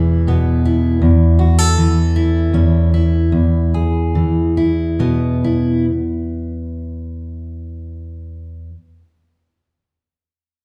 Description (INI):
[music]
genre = folk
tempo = 43-54 BPM (dotted quarters)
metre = 6/8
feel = straight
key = E major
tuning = A4 = 440 Hz
[part]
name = fingerpicked steel-string acoustic guitar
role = accompaniment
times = 0.0-8.7 s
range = E2 to A4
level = -16 LUFS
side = equal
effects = none
[part]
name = picked electric bass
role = bass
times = 0.0-1.0 s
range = none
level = barely audible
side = none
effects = none
[sound]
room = light reverb, studio reverb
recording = live gig heard through the venue's PA, club reverb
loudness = -15 LUFS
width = mono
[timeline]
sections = 0.0-5.9 A section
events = slowing down 1.0-5.9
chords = 0.0 E; 1.0 A/E; 3.3 E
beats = | 1.03 2.16 | 3.33 4.57